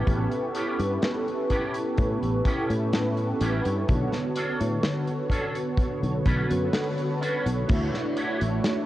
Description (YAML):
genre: vaporwave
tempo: 63 BPM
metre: 4/4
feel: straight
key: B minor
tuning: A4 = 441 Hz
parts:
  - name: mellow synth brass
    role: accompaniment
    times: 0.0-8.9 s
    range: D3 to C#5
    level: -27 LUFS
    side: equal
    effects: ensemble chorus, analog delay
  - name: warbly tape-like pad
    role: sustained chords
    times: 0.0-8.9 s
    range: D4 to C#6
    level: -36 LUFS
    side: equal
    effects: chorus, built-in reverb
  - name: electric guitar with an envelope filter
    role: riff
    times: 0.0-8.4 s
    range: B3 to C#5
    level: -35 LUFS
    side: right 1 dB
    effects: ensemble chorus, analog delay
  - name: sustaining fretless electric bass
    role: bass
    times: 0.1-8.6 s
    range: A1 to A2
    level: -27 LUFS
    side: equal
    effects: wide subtle chorus
  - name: kick drum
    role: drums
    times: 0.1-7.9 s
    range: none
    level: -27 LUFS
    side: equal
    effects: none
  - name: modern studio drum kit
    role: drums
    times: 0.1-8.8 s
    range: crash cymbal, hi-hat, snare drum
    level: -32 LUFS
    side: equal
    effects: none
room: light reverb, small room reverb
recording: worn, warbling old tape, cassette tape, warbly pitch drift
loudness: -23 LUFS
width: side -14 dB against mid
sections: 0.0-7.7 A section; 7.7-8.9 B section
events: kick drops out 6.7-7.7; band accent 6.7-7.2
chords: 0.0 A9; 3.9 Bm9; 7.7 Dmaj9